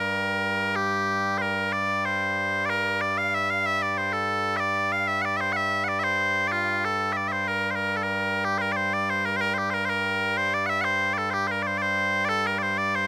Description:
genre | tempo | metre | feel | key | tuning
celtic folk | 125 BPM (dotted quarters) | 6/8 | straight | G dorian | A4 = 440 Hz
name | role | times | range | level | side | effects
loud bright bagpipes | solo | 0.0-13.1 s | G2 to F#5 | -22 LUFS | equal | none
room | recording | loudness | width
little or no reverb | recorded outdoors, with no room sound | -22 LUFS | side -21 dB against mid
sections
0.8-8.4 A section; 8.4-13.1 B section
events
none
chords
none

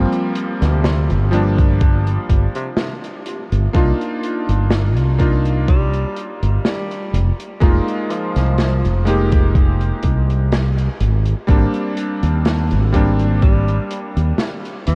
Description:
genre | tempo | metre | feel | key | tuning
vaporwave | 62 BPM | 4/4 | swing 53% on 16ths | C minor | A4 = 442 Hz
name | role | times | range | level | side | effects
bright electric grand piano | accompaniment | 0.0-14.9 s | F3 to G4 | -24 LUFS | equal | subtle chorus, analog delay
fretless electric bass | bass | 0.0-14.9 s | F1 to Eb2 | -18 LUFS | equal | none
open jazz drum kit | drums | 0.1-14.9 s | hi-hat, snare drum | -27 LUFS | equal | none
warm tenor saxophone | melody | 0.6-14.9 s | C3 to G3 | -31 LUFS | equal | tape echo
electronic kick drum | drums | 1.6-13.6 s | none | -17 LUFS | equal | none
room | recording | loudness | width
light reverb | cassette tape | -17 LUFS | mono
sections
0.0-14.9 A section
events
none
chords
0.0 Gm7; 3.7 Cm11; 7.1 Fm11; 11.0 Abmaj9#11

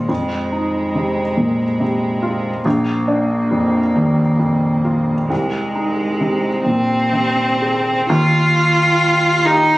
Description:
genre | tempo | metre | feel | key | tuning
neoclassical piano and strings | 40-48 BPM (dotted quarters) | 6/8 | rubato | Eb major | A4 = 440 Hz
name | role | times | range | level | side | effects
clear cello | second line | 0.0-9.8 s | Ab3 to F4 | -17 LUFS | equal | none
felt-muted upright piano | accompaniment | 0.0-9.8 s | Bb1 to Bb4 | -17 LUFS | equal | none
deep dark ambient pad | sustained chords | 8.9-9.8 s | none | barely audible | none | none
room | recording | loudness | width
moderate studio reverb, RT60 0.5 s | recorded on a phone in the room, studio reverb, compression | -14 LUFS | side -18 dB against mid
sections
0.0-8.1 A section; 8.1-9.8 B section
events
none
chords
0.1 Fm7; 2.6 Bb; 5.3 Abadd9/C; 8.1 Ebadd9

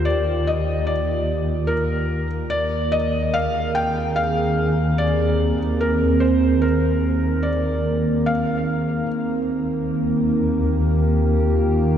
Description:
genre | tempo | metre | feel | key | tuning
ambient | 73 BPM | 4/4 | straight | Eb major | A4 = 439 Hz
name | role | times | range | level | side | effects
felt-muted upright piano | melody | 0.0-9.1 s | Bb4 to G5 | -24 LUFS | left 1 dB | shimmer reverb, tape echo
evolving wavetable pad | sustained chords | 0.0-12.0 s | Eb3 to Bb4 | -21 LUFS | right 2 dB | chorus, built-in reverb, shimmer reverb
dark chamber double bass section | bass | 0.0-12.0 s | Eb2 | -23 LUFS | left 1 dB | none
room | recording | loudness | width
wet lush hall reverb, RT60 2.9 s | dreamy mix soaked in reverb, cassette tape | -18 LUFS | side -9 dB against mid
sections
0.0-12.0 A section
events
filter sweep on ambient pad 0.0-12.0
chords
0.0 Ebmaj7; 2.5 Bb7/Eb; 9.1 Eb

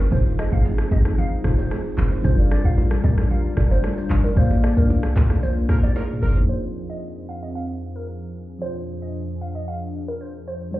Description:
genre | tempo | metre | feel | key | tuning
afrobeats | 113 BPM | 4/4 | straight | F dorian | A4 = 440 Hz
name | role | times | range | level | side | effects
glassy wavetable pluck | melody | 0.0-10.8 s | Bb4 to F5 | -33 LUFS | right 1 dB | chorus
tine electric piano | accompaniment | 0.0-10.8 s | F3 to F5 | -30 LUFS | left 3 dB | none
warm analog pad | sustained chords | 0.0-10.8 s | F2 to Bb4 | -31 LUFS | left 1 dB | chorus
buzzing kalimba | riff | 0.0-6.4 s | C4 to D5 | -34 LUFS | right 2 dB | none
deep log drum bass | bass | 0.0-6.4 s | F1 to C2 | -20 LUFS | equal | none
bongos and congas | percussion | 0.0-6.5 s | none | -31 LUFS | right 3 dB | none
afro-pop drum kit | drums | 0.1-6.5 s | handclaps, hi-hat, kick drum, rim click, shaker, snare drum, toms | -22 LUFS | equal | none
warm horn section | second line | 5.7-6.4 s | F3 to Bb4 | -33 LUFS | left 1 dB | none
room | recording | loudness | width
little or no reverb | heard muffled through a wall, club reverb, EQ, low-pass filter | -18 LUFS | side -16 dB against mid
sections
0.0-6.5 A section; 6.5-10.8 B section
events
band accent 4.4-6.5; drum fill 6.0-6.5; filter sweep 6.5-10.8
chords
0.0 Fm; 2.2 Gm7; 6.5 Fm

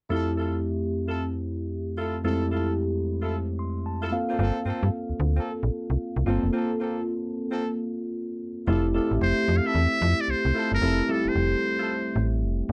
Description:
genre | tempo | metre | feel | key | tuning
R&B | 112 BPM | 4/4 | swing 63% on 16ths | F major | A4 = 440 Hz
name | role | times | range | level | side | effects
mellow tine electric piano | accompaniment | 0.1-12.7 s | F2 to C6 | -29 LUFS | equal | phaser
warm horn section | stabs | 0.1-11.9 s | Bb3 to A4 | -35 LUFS | equal | none
slap-like FM bass | bass | 4.4-12.7 s | F1 to G2 | -26 LUFS | equal | none
trumpet with metal mute | melody | 9.2-12.3 s | A4 to F5 | -29 LUFS | equal | none
room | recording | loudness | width
light reverb | dry, close 1970s-style studio recording | -26 LUFS | mono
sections
0.1-8.7 A section; 8.7-12.7 B section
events
tine electric piano fill 3.3-4.4; break 6.5-8.7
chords
0.1 Fmaj7; 4.1 Gm11 (rootless); 8.7 Fmaj7

